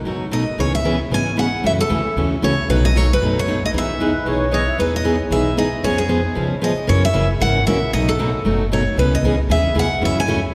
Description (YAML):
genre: acoustic string swing (jazz manouche)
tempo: 229 BPM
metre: 4/4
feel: swing 57% on 8ths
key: E major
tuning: A4 = 440 Hz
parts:
  - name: picked steel-string acoustic guitar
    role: accompaniment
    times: 0.1-10.4 s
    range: B2 to G#4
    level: -22 LUFS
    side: equal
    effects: none
  - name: upright bass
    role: bass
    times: 0.1-10.4 s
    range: F#1 to C#3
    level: -24 LUFS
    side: equal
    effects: none
  - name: picked steel-string acoustic guitar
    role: melody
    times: 0.3-10.4 s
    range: G#4 to G#5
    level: -24 LUFS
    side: equal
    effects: none
  - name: accordion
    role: second line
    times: 4.0-4.8 s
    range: B4 to E5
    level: -33 LUFS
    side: equal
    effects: none
room: wet cathedral reverb, RT60 6.2 s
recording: recorded in a church or concert hall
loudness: -18 LUFS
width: mono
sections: 0.0-4.8 A section; 4.8-10.5 A section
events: none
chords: 0.0 B7; 0.6 C#m7; 1.6 F#m7; 2.7 B9; 3.7 Emaj7; 5.8 C#7/E#; 6.9 F#7; 7.9 B9; 9.0 C#m9; 10.0 F#m9